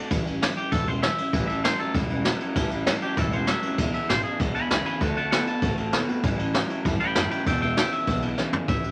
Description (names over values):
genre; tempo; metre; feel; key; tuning
rockabilly; 196 BPM; 4/4; straight; A mixolydian; A4 = 437 Hz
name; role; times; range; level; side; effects
twangy electric guitar; melody; 0.0-8.9 s; D4 to B5; -30 LUFS; equal; none
picked steel-string acoustic guitar; accompaniment; 0.0-8.9 s; E2 to F#4; -34 LUFS; equal; none
upright bass; bass; 0.1-8.9 s; E1 to D2; -34 LUFS; equal; none
jazz brush drum kit; drums; 0.1-8.9 s; kick drum, ride cymbal, snare drum, toms; -28 LUFS; equal; none
electric guitar through a small old amp; riff; 1.3-8.7 s; E2 to B3; -33 LUFS; equal; none
room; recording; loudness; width
moderate studio reverb, RT60 0.7 s; none; -25 LUFS; mono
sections
0.0-8.7 A section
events
drum fill 8.4-8.7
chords
0.1 A7; 3.8 E7; 5.0 D7; 6.2 A7; 7.5 E7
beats
| 0.11 0.41 0.72 1.03 | 1.33 1.64 1.95 2.25 | 2.56 2.86 3.17 3.48 | 3.78 4.09 4.40 4.70 | 5.01 5.32 5.62 5.93 | 6.24 6.54 6.85 7.15 | 7.46 7.77 8.07 8.38 | 8.69